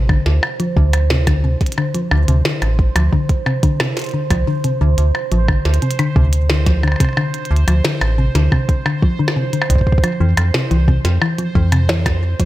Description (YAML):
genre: IDM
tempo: 89 BPM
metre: 4/4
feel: straight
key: D minor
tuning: A4 = 440 Hz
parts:
  - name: thumb-piano-like synth pluck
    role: arpeggios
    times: 0.0-12.5 s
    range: C3 to F3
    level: -19 LUFS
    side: left 2 dB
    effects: chorus, cassette tape, digital delay
  - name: metallic FM bass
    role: bass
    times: 0.0-12.3 s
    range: A1 to F2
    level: -15 LUFS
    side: equal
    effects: none
  - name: bubbling stepped-filter texture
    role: texture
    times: 0.0-12.5 s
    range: C5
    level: -27 LUFS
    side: right 7 dB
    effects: chorus, built-in reverb
  - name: electronic kick drum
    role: drums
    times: 0.1-12.5 s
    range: none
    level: -16 LUFS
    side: equal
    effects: none
  - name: glitchy drum kit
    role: drums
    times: 0.1-12.5 s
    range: hi-hat, percussion blips, snare drum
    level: -22 LUFS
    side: equal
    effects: digital delay
room: light reverb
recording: none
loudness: -14 LUFS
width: side -16 dB against mid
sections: 0.0-12.5 A section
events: filter sweep on synth arpeggio sound 0.0-12.5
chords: 0.0 Dm7; 9.9 F5